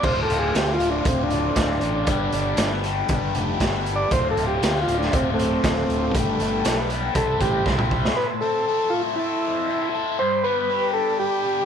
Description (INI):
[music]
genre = psychedelic rock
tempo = 118 BPM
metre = 4/4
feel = straight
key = D dorian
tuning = A4 = 440 Hz
[part]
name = combo organ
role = melody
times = 0.0-11.7 s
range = A3 to D5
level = -23 LUFS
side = right 1 dB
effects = slapback echo
[part]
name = combo organ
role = sustained chords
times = 0.0-11.7 s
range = B4 to C6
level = -32 LUFS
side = right 15 dB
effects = spring reverb
[part]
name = biting overdriven guitar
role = riff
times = 0.0-11.7 s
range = D2 to C5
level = -27 LUFS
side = left 12 dB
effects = phaser
[part]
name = fuzz fingered electric bass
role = bass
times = 0.0-8.1 s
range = D1 to D2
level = -27 LUFS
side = right 1 dB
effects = overdrive
[part]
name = raw garage drum kit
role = drums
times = 0.0-8.2 s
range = crash cymbal, hi-hat, kick drum, snare drum, toms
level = -25 LUFS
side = right 1 dB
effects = none
[sound]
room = light reverb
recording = 1960s-style stereo with parts hard left and right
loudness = -20 LUFS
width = side -7 dB against mid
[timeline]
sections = 0.0-8.2 A section; 8.2-11.7 B section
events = transistor combo organ solo 0.0-8.2; drum fill 7.7-8.2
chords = 0.0 Dm7; 2.1 Gadd9; 4.1 Dm7; 6.1 Gadd9; 7.2 Cmaj7; 8.2 Am; 10.2 G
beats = | 0.04 0.55 1.06 1.57 | 2.08 2.58 3.09 3.60 | 4.11 4.62 5.12 5.63 | 6.14 6.65 7.16 7.66 | 8.17 8.68 9.18 9.69 | 10.20 10.70 11.21